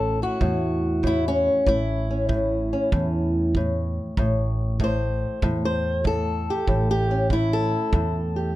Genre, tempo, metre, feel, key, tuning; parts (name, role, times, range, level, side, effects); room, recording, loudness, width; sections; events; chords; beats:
acoustic country blues, solo or duo; 96 BPM; 4/4; swing 68% on 8ths; A mixolydian; A4 = 439 Hz
fingerpicked old ladder-braced acoustic guitar; melody; 0.0-8.6 s; A2 to C5; -23 LUFS; left 1 dB
upright bass; bass; 0.0-8.6 s; A1 to E2; -26 LUFS; equal
kick drum; drums; 0.4-8.1 s; -27 LUFS; right 1 dB
little or no reverb; close, detailed microphones; -21 LUFS; side -15 dB against mid
0.0-8.6 A section
0.0 A
0.41 1.04 | 1.67 2.30 2.92 3.55 | 4.18 4.80 5.43 6.05 | 6.68 7.30 7.93 8.55